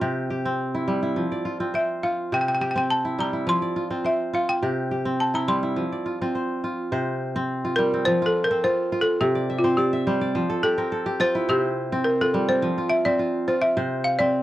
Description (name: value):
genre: west african traditional, West African string and xylophone music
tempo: 105 BPM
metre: 4/4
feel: straight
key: C mixolydian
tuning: A4 = 439 Hz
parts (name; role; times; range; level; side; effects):
- kora; arpeggios; 0.0-14.4 s; C3 to E5; -24 LUFS; equal; none
- balafon; melody; 1.8-14.4 s; F4 to C6; -23 LUFS; equal; none
room: light reverb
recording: dry, close 1970s-style studio recording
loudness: -21 LUFS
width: side -14 dB against mid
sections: 0.0-6.9 A section; 6.9-14.4 B section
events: balafon solo 6.9-14.4; kora fill 9.4-11.5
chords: 0.0 C; 1.2 F5; 2.3 C; 3.5 F5; 4.6 C; 5.8 F5; 6.9 C5; 8.1 F5; 9.2 C5; 10.4 F; 11.5 C5; 12.6 F5; 13.8 C5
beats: | 0.02 0.60 1.18 1.75 | 2.33 2.90 3.48 4.05 | 4.63 5.20 5.78 6.35 | 6.92 7.50 8.07 8.64 | 9.21 9.78 10.35 10.92 | 11.49 12.06 12.63 13.20 | 13.77 14.34